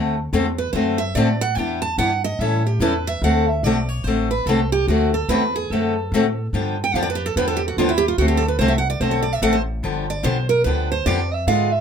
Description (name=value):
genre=acoustic string swing (jazz manouche)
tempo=145 BPM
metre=4/4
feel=swing 64% on 8ths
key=D mixolydian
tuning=A4 = 444 Hz
part: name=picked steel-string acoustic guitar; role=accompaniment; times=0.0-11.7 s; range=D3 to A4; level=-21 LUFS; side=left 3 dB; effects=none
part: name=upright bass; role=bass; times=0.0-11.8 s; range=G1 to A2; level=-23 LUFS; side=equal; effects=none
part: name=picked steel-string acoustic guitar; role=second line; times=0.6-11.8 s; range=E4 to A5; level=-22 LUFS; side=right 5 dB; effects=none
room=moderate small room reverb, RT60 0.5 s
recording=none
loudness=-18 LUFS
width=side -7 dB against mid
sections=0.0-3.2 A section; 3.2-11.8 A section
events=steel-string acoustic guitar solo 0.0-11.8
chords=0.0 D7; 1.6 Em7; 2.4 A7; 3.2 D7; 6.5 G7; 8.2 D7; 9.8 G7